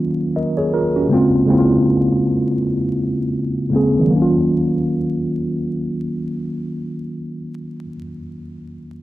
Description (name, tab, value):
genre	hip hop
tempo	80 BPM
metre	4/4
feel	swing 59% on 16ths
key	Eb dorian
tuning	A4 = 445 Hz
part	mellow tine electric piano	accompaniment	0.0-9.0 s	Db3 to Eb5	-17 LUFS	equal	medium stereo tremolo, low-pass filter
room	wet studio reverb, RT60 0.6 s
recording	vinyl crackle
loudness	-16 LUFS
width	side -16 dB against mid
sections	0.0-4.1 A section; 4.1-7.1 B section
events	filter sweep on tine electric piano 0.0-4.1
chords	0.0 Ebm9; 1.1 Bbm9; 4.1 Ebm9